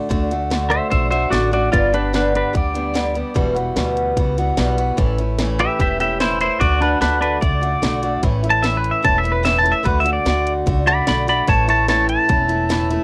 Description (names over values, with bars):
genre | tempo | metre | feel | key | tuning
honky-tonk and classic country | 148 BPM | 4/4 | straight | D major | A4 = 440 Hz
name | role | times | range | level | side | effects
picked acoustic archtop guitar | accompaniment | 0.0-13.0 s | E2 to G4 | -24 LUFS | equal | cassette tape
upright bass | bass | 0.1-13.0 s | E1 to D2 | -25 LUFS | equal | none
garage drum kit | drums | 0.1-13.0 s | hi-hat, kick drum, snare drum | -24 LUFS | equal | cassette tape
pedal steel guitar | melody | 0.7-13.0 s | D4 to B5 | -20 LUFS | equal | none
room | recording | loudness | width
light reverb | home recording on cassette | -18 LUFS | mono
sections
0.1-13.0 A section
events
pedal steel guitar solo 0.1-13.0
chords
0.1 D; 1.7 G; 3.4 Emadd9; 5.0 A; 6.6 D; 8.2 A; 9.9 D; 11.5 A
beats
| 0.11 0.52 0.92 1.33 | 1.73 2.14 2.55 2.95 | 3.36 3.77 4.17 4.58 | 4.99 5.39 5.80 6.21 | 6.61 7.02 7.42 7.83 | 8.24 8.64 9.05 9.46 | 9.86 10.27 10.68 11.08 | 11.49 11.89 12.30 12.71